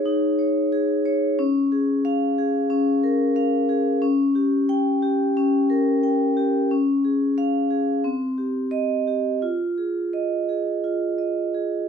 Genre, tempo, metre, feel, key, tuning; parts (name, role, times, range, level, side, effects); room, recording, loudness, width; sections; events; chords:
classical, contemporary piece for solo vibraphone; 90 BPM; 4/4; uneven beats, rubato; F minor; A4 = 440 Hz
vibraphone with medium hard mallets; solo; 0.0-11.9 s; C4 to G5; -20 LUFS; equal
light reverb; close, detailed microphones; -20 LUFS; side -7 dB against mid
0.0-11.9 A section
0.0 Eb7sus4; 1.4 Db6; 4.0 Gdim/Db; 6.7 Db; 8.0 Cm; 9.4 Fm7